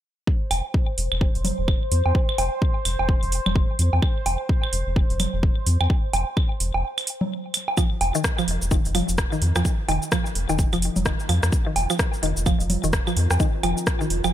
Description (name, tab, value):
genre	minimal techno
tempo	128 BPM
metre	4/4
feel	swing 60% on 16ths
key	unclear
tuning	A4 = 440 Hz
part	electronic kick drum	drums	0.3-14.0 s	none	-22 LUFS	equal	none
part	bubbling stepped-filter texture	texture	0.3-7.8 s	C5	-32 LUFS	equal	chorus, built-in reverb, sidechain pumping
part	rubbery square bass	bass	0.5-14.3 s	F1 to F2	-23 LUFS	equal	sidechain pumping
part	house drum kit	drums	0.5-14.3 s	cabasa, hi-hat, rim click	-28 LUFS	equal	none
part	claves, woodblock and congas	percussion	0.5-14.3 s	none	-27 LUFS	right 2 dB	ping-pong delay
part	mallet-like synth pluck	riff	7.8-14.3 s	Eb3 to F3	-27 LUFS	equal	chorus, phaser, sidechain pumping, ping-pong delay
part	deep dark ambient pad	texture	11.8-14.3 s	F4 to Bb5	-37 LUFS	right 3 dB	chorus, built-in reverb, sidechain pumping
room	little or no reverb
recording	none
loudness	-20 LUFS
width	side -12 dB against mid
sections	0.3-7.8 A section; 7.8-14.3 B section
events	break 6.8-7.8; fade-in on ambient pad 7.8-14.3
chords	0.3 F5; 7.8 Fsus4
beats	| 0.28 0.74 1.21 1.68 | 2.15 2.62 3.09 3.56 | 4.03 4.49 4.96 5.43 | 5.90 6.37 6.84 7.31 | 7.78 8.24 8.71 9.18 | 9.65 10.12 10.59 11.06 | 11.53 11.99 12.46 12.93 | 13.40 13.87